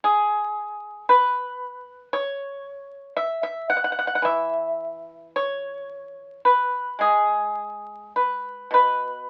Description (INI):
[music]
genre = chinese traditional, Chinese solo plucked strings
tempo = 51-59 BPM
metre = 4/4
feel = rubato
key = E gong mode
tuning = A4 = 440 Hz
[part]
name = pipa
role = solo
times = 0.0-9.3 s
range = B2 to F#5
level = -24 LUFS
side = equal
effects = none
[sound]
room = light reverb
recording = very old 78 rpm record, vinyl crackle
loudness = -23 LUFS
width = mono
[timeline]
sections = 0.0-9.3 A section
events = none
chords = none